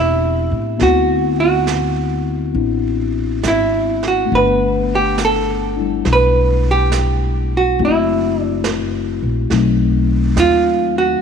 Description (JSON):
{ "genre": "jazz ballad", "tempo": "69 BPM", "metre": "4/4", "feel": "swing 67% on 8ths", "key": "unclear", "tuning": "A4 = 439 Hz", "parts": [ { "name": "hollow-body jazz guitar", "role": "melody", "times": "0.0-11.2 s", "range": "E4 to B4", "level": "-16 LUFS", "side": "right 4 dB", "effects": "none" }, { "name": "mellow tine electric piano", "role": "accompaniment", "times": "0.0-11.2 s", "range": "F#3 to F#5", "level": "-20 LUFS", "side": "left 12 dB", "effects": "none" }, { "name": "upright bass", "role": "bass", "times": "0.0-11.2 s", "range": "E1 to A2", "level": "-19 LUFS", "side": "equal", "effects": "none" }, { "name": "jazz brush drum kit", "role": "drums", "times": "0.8-11.2 s", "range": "brushed snare drum, hi-hat, snare drum", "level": "-28 LUFS", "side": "right 8 dB", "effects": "none" } ], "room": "light reverb, studio ambience", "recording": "1960s-style stereo with parts hard left and right", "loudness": "-14 LUFS", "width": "side -6 dB against mid", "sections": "0.0-11.2 A section", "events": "none", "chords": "0.0 Am11; 0.8 D13; 4.3 Gmaj9; 7.8 F#m7b5; 9.5 B7b9", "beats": "| 0.80 1.67 2.55 3.44 | 4.32 5.19 6.05 6.92 | 7.78 8.64 9.50 10.36" }